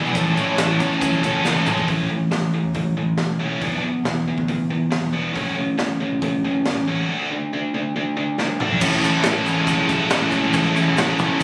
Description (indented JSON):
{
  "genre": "indie rock",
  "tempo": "138 BPM",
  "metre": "4/4",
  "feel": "straight",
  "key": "A major",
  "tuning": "A4 = 440 Hz",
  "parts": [
    { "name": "ensemble organ-string", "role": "sustained chords", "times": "0.0-1.9 s", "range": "C#5 to E6", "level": "-34 LUFS", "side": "equal", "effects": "none" },
    { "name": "biting overdriven guitar", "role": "riff", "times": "0.0-11.4 s", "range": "E3 to A4", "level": "-23 LUFS", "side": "equal", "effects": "none" },
    { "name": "biting overdriven guitar", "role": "riff", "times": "0.0-1.9, 8.8-11.4 s", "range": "A2 to D4", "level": "-25 LUFS", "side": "equal", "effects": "analog chorus, digital delay" },
    { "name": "growling picked electric bass", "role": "bass", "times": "0.1-11.4 s", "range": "E1 to A2", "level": "-30 LUFS", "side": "equal", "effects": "overdrive" },
    { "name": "raw garage drum kit", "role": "drums", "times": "0.1-11.4 s", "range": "crash cymbal, hi-hat, kick drum, ride cymbal, snare drum, toms", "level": "-27 LUFS", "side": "equal", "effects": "none" },
    { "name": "tube shaker", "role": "percussion", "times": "0.1-1.8, 8.8-11.4 s", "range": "none", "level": "-43 LUFS", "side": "equal", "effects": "none" }
  ],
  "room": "light reverb",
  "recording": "recorded on a phone in the room, studio reverb, lossy compression artefacts",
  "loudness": "-21 LUFS",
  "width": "mono",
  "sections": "0.0-1.9 A section; 1.9-8.8 B section; 8.8-11.4 A section",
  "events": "drum fill 1.5-1.9, 8.4-8.8",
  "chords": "0.2 Amaj7; 1.9 A; 3.6 E7; 5.4 F#m; 7.1 D; 8.8 Amaj7",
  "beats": "| 0.15 0.59 1.02 1.45 | 1.88 2.32 2.75 3.19 | 3.62 4.05 4.49 4.92 | 5.36 5.79 6.22 6.66 | 7.09 7.53 7.96 8.39 | 8.82 9.26 9.69 10.12 | 10.55 10.98 11.41"
}